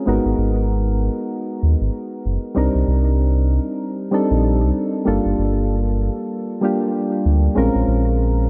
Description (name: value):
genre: sunset chillout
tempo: 96 BPM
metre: 4/4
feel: swing 58% on 16ths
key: unclear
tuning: A4 = 440 Hz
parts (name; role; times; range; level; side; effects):
- soft electric-piano-like synth keys; accompaniment; 0.0-8.5 s; G3 to Bb4; -22 LUFS; equal; chorus, digital delay
- round analog bass; bass; 0.1-8.5 s; Gb1 to Eb2; -20 LUFS; equal; none
room: moderate lush hall reverb, RT60 2.8 s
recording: dark, warm production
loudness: -19 LUFS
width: mono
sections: 0.0-8.5 A section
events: none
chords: 0.1 Abm9; 2.6 Cm9; 5.1 Gm9; 7.6 Bbm9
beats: | 0.06 0.69 1.31 1.94 | 2.56 3.19 3.81 4.44 | 5.06 5.69 6.31 6.94 | 7.56 8.19